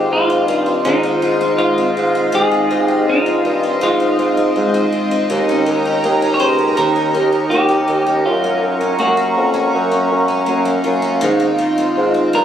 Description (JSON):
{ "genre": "dream pop", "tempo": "81 BPM", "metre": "4/4", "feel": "straight", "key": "Ab major", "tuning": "A4 = 438 Hz", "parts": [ { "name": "semi-hollow electric guitar", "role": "melody", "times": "0.0-12.4 s", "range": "Eb4 to Db5", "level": "-19 LUFS", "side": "equal", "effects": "tape echo" }, { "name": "phased analog pad", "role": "sustained chords", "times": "0.0-12.4 s", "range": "F4 to Db6", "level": "-19 LUFS", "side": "equal", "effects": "phaser, chorus" }, { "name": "picked twelve-string acoustic guitar", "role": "arpeggios", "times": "0.0-12.4 s", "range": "Eb3 to G4", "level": "-20 LUFS", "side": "equal", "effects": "lush chorus, tape echo" }, { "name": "warm bassoon", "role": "bass", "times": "0.0-12.4 s", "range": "Db2 to Ab2", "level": "-18 LUFS", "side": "equal", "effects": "none" } ], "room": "moderate huge ambient reverb, RT60 4.5 s", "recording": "recorded on a phone in the room, studio ambience", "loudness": "-13 LUFS", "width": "side -9 dB against mid", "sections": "0.0-12.4 A section", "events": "none", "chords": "0.0 Ab6; 5.3 Eb7; 8.3 Gbmaj7; 11.2 Ab6" }